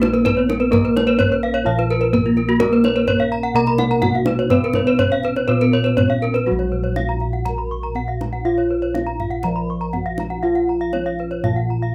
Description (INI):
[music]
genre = Balinese gamelan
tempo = 123 BPM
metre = 4/4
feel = uneven beats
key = Bb pelog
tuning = A4 = 441 Hz
[part]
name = gamelan-type bronze metallophone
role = melody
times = 0.0-11.9 s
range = Gb3-20c to Bb4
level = -25 LUFS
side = equal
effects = none
[part]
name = gamelan-type bronze metallophone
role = accompaniment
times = 0.0-6.5, 10.4-11.9 s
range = F3-30c to Cb4+20c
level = -27 LUFS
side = equal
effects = none
[part]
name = gamelan-type bronze metallophone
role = arpeggios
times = 0.0-11.8 s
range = F4-30c to Db6-30c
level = -27 LUFS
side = equal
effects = none
[part]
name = gamelan-type bossed gongs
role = bass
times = 0.0-11.9 s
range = Bb1 to Cb5+20c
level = -24 LUFS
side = equal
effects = none
[part]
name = kendang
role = percussion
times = 0.0-11.6 s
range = none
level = -27 LUFS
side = equal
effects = none
[part]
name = gamelan-type bronze metallophone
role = arpeggios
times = 0.1-11.9 s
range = Gb4-20c to Cb6+20c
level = -25 LUFS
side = equal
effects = none
[sound]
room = light reverb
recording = none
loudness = -19 LUFS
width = mono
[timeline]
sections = 0.0-6.5 A section; 6.5-11.9 B section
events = none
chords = none